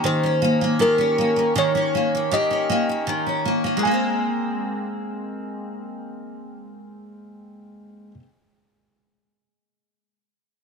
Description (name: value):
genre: acoustic pop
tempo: 79 BPM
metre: 4/4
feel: straight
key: Ab major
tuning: A4 = 440 Hz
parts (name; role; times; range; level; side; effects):
- bell-like tine electric piano; melody; 0.0-8.1 s; Bb4 to Ab5; -23 LUFS; equal; analog chorus
- picked steel-string acoustic guitar; accompaniment; 0.0-8.3 s; Eb3 to G4; -23 LUFS; equal; double-tracked left and right
room: light reverb, small room ambience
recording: none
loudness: -19 LUFS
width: side -5 dB against mid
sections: 0.0-3.8 A section; 3.8-6.9 B section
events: none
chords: 0.0 Eb7; 3.8 Abadd9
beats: 0.05 | 0.81 1.56 2.32 3.07 | 3.83 4.59 5.34 6.10